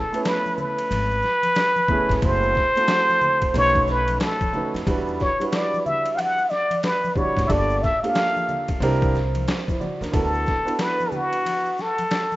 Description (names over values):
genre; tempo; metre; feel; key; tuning
hip hop, jazz-hop; 91 BPM; 4/4; swing 63% on 16ths; unclear; A4 = 440 Hz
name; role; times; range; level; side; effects
trumpet with plunger mute; melody; 0.0-12.4 s; F#4 to F#5; -21 LUFS; equal; none
dark baby grand piano; accompaniment; 0.1-11.7 s; G3 to D5; -27 LUFS; right 3 dB; none
trip hop sampler-style drum kit; drums; 0.1-12.3 s; hi-hat, kick drum, ride cymbal, snare drum; -27 LUFS; equal; none
maracas and congas; percussion; 0.1-12.4 s; none; -36 LUFS; left 2 dB; none
upright bass; bass; 0.9-10.4 s; F#1 to E#2; -25 LUFS; equal; none
room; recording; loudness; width
moderate plate reverb, RT60 3.2 s; rough home demo mix, nothing above 7.7 kHz; -19 LUFS; side -17 dB against mid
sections
0.0-12.4 A section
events
none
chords
0.0 Amaj9; 2.2 F#m7b5; 3.5 B7; 4.9 Em9; 7.5 Gm7; 8.8 C9; 10.1 D6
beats
0.25 0.91 1.57 | 2.23 2.89 3.55 4.21 | 4.87 5.53 6.18 6.84 | 7.50 8.16 8.82 9.48 | 10.14 10.80 11.46 12.12